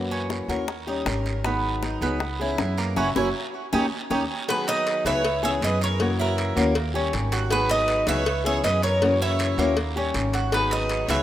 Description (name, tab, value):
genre	latin, Cuban son and guajira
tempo	159 BPM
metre	4/4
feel	straight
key	G# minor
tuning	A4 = 442 Hz
part	nylon-string guitar	accompaniment	0.0-11.2 s	C#3 to G#4	-27 LUFS	left 4 dB	none
part	upright bass	bass	0.0-11.2 s	F#1 to F#2	-28 LUFS	right 1 dB	none
part	Cuban tres	arpeggios	0.1-11.2 s	A#3 to B4	-28 LUFS	right 4 dB	tape echo
part	bongos and cowbell	percussion	0.1-11.2 s	none	-32 LUFS	left 5 dB	none
part	guiro	percussion	0.3-11.2 s	none	-36 LUFS	right 3 dB	none
part	Cuban tres	melody	4.5-11.2 s	A#4 to E5	-25 LUFS	equal	none
part	rich chamber violin section	second line	4.5-11.2 s	F#4 to C#5	-34 LUFS	right 2 dB	none
room	moderate lush hall reverb, RT60 2.8 s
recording	rough home demo mix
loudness	-21 LUFS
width	side -12 dB against mid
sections	0.0-4.5 A section; 4.5-11.2 B section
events	band accent 3.0-4.5; drum fill 3.3-4.5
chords	0.0 F#7; 0.7 D#7; 1.4 G#m7; 2.2 C#m7; 3.0 F#7; 3.7 D#7; 4.5 G#m7; 5.2 C#m7; 6.0 F#7; 6.8 D#7; 7.5 G#m7; 8.3 C#m7; 9.0 F#7; 9.8 D#7; 10.5 G#m7